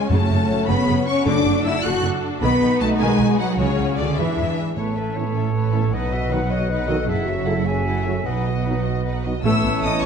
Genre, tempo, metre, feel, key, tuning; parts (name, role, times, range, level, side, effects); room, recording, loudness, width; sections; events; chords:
cinematic; 103 BPM (dotted quarters); 6/8; straight; F# minor, A lydian from 4.8 s; A4 = 440 Hz
rich symphonic violin section; melody; 0.0-10.1 s; C#5 to F#6; -28 LUFS; left 3 dB
warm symphonic violin section; second line; 0.0-10.1 s; E4 to D#5; -31 LUFS; left 4 dB
rich studio viola section; accompaniment; 0.0-10.1 s; C#3 to F#4; -28 LUFS; equal
warm French horn section; sustained chords; 0.0-10.1 s; C#3 to F#4; -25 LUFS; left 5 dB
rich symphonic cello section; bass; 0.0-10.1 s; F#2 to F#4; -25 LUFS; right 3 dB
rich symphonic double bass section; bass; 0.1-10.1 s; F#1 to E2; -24 LUFS; right 4 dB
timpani; percussion; 0.1-5.3 s; F#2 to C#3; -27 LUFS; equal
clear oboe; second line; 4.8-10.1 s; B4 to F#5; -32 LUFS; equal
hollow concert flute; second line; 4.8-10.1 s; D#5 to A5; -31 LUFS; left 4 dB
mellow clarinet; second line; 4.8-10.1 s; F#4 to C#5; -30 LUFS; left 3 dB
clear trombone section; sustained chords; 5.2-10.1 s; B2 to A3; -30 LUFS; right 4 dB
bright trumpet section; stabs; 9.4-10.1 s; C#5 to E5; -25 LUFS; right 2 dB
moderate scoring stage reverb, RT60 1.6 s; dark, warm production, nothing above 10.9 kHz; -18 LUFS; side -6 dB against mid
0.0-4.8 A section; 4.8-9.4 B section
0.1 F#m; 1.3 D/F#; 2.4 B; 3.6 C#sus4; 4.2 E7; 4.8 Aadd9; 5.9 B; 7.1 F#m7; 8.3 B; 9.4 Aadd9